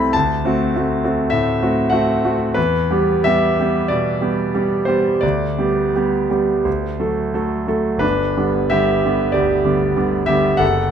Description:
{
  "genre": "classical, romantic character piece for solo piano",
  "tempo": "81-103 BPM",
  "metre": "4/4",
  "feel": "rubato",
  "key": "G major",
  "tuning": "A4 = 440 Hz",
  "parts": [
    { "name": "clear concert grand piano", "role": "solo", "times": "0.0-10.9 s", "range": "F#1 to B5", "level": "-15 LUFS", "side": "equal", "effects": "none" }
  ],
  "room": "wet recital hall reverb, RT60 1.3 s",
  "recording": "close, detailed microphones",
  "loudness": "-16 LUFS",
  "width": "side -8 dB against mid",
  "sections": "0.0-8.0 A section; 8.0-10.9 A section",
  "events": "none",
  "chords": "0.1 D7; 2.6 Em; 5.2 G/D; 6.7 D; 8.0 G"
}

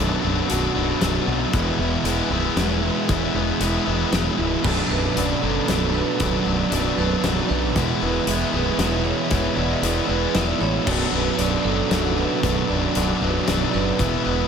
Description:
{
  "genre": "post-rock",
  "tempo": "116 BPM",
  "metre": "3/4",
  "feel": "straight",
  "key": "B dorian",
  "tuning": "A4 = 440 Hz",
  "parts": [
    { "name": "evolving wavetable pad", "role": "sustained chords", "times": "0.0-14.5 s", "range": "F#4 to B5", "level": "-34 LUFS", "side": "right 1 dB", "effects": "none" },
    { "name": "overdriven semi-hollow guitar", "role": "riff", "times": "0.0-14.5 s", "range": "B1 to E4", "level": "-24 LUFS", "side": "left 11 dB", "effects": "none" },
    { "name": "thick fuzz guitar", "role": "riff", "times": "0.0-14.5 s", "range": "B1 to E4", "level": "-24 LUFS", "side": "right 10 dB", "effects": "distortion" },
    { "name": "growling fingered electric bass", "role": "bass", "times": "0.0-14.4 s", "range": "B0 to B1", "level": "-26 LUFS", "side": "left 1 dB", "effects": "overdrive" },
    { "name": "big rock drum kit", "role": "drums", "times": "0.5-14.1 s", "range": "crash cymbal, hi-hat, kick drum, snare drum", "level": "-27 LUFS", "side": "left 1 dB", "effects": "none" },
    { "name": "vibraphone with hard mallets", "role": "arpeggios", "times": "4.9-14.5 s", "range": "A4 to E5", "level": "-29 LUFS", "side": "right 8 dB", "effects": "analog delay" }
  ],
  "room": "light reverb, small room reverb",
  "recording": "none",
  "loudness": "-19 LUFS",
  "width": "side -7 dB against mid",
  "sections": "0.0-14.5 A section",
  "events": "none",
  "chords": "0.0 Bm; 1.5 E; 4.6 Bm; 7.8 E; 10.9 Bm"
}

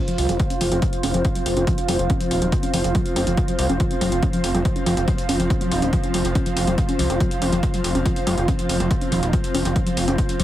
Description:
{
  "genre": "driving peak-time techno",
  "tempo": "141 BPM",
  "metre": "4/4",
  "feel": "straight",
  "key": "unclear",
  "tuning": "A4 = 443 Hz",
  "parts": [
    { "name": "warbly dusty pluck", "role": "riff", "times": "0.0-10.4 s", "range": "F3 to Db4", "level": "-26 LUFS", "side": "equal", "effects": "chorus, sidechain pumping, digital delay" },
    { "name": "swarming drone", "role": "drone", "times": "0.2-10.4 s", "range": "F3 to C4", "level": "-29 LUFS", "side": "equal", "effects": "built-in reverb, sidechain pumping" },
    { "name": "airy breathy pad", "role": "texture", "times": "0.0-10.4 s", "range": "F4 to F5", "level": "-26 LUFS", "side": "right 2 dB", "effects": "chorus, sidechain pumping" },
    { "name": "electronic hi-hat", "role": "drums", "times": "0.1-10.4 s", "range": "none", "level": "-30 LUFS", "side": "left 1 dB", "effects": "sidechain pumping on hats, sidechain pumping on cymbals" },
    { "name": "gritty driven synth bass", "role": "bass", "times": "0.2-10.4 s", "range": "Eb1 to C2", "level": "-23 LUFS", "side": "equal", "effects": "sidechain pumping" },
    { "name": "electronic kick drum", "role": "drums", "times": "0.4-10.3 s", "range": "none", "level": "-22 LUFS", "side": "equal", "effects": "none" }
  ],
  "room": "light reverb",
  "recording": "heavily compressed radio sound, multiband compression",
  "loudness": "-18 LUFS",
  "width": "side -13 dB against mid",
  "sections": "0.0-10.4 A section",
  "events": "filter sweep on synth arpeggio sound 0.0-10.4",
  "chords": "0.0 F5"
}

